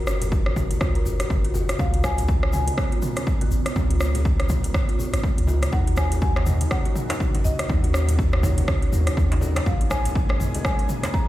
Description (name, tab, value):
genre	afro house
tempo	122 BPM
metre	4/4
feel	swing 59% on 16ths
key	Eb minor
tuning	A4 = 445 Hz
part	kalimba	arpeggios	0.0-11.1 s	F3 to Db5	-32 LUFS	left 1 dB	sidechain pumping, tape echo
part	warm 808-style bass	bass	0.0-10.6 s	Gb1 to Eb2	-24 LUFS	equal	sidechain pumping
part	house drum kit	drums	0.1-11.1 s	hi-hat, rim click, toms	-29 LUFS	equal	overdrive
part	congas	percussion	0.1-11.1 s	none	-32 LUFS	left 1 dB	none
part	egg shaker	percussion	0.1-11.3 s	none	-42 LUFS	left 4 dB	none
part	electronic kick drum	drums	0.3-11.3 s	none	-23 LUFS	equal	overdrive
part	marimba with soft mallets	melody	1.8-11.3 s	Db5 to Bb5	-33 LUFS	left 2 dB	tape echo
part	warm analog pad	sustained chords	5.7-11.3 s	Db3 to Ab5	-35 LUFS	equal	chorus, sidechain pumping
part	djembe	percussion	5.7-11.3 s	none	-31 LUFS	right 1 dB	none
room	small room ambience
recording	played on a big sound system in a bare room, stone room reverb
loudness	-20 LUFS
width	side -15 dB against mid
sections	0.0-11.3 A section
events	none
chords	0.0 Gb5; 1.8 Db5; 5.7 Ebm7; 9.7 Bbm7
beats	0.32 0.81 1.30 | 1.79 2.29 2.78 3.27 | 3.76 4.25 4.75 5.24 | 5.73 6.22 6.71 7.20 | 7.70 8.19 8.68 9.17 | 9.66 10.15 10.65 11.14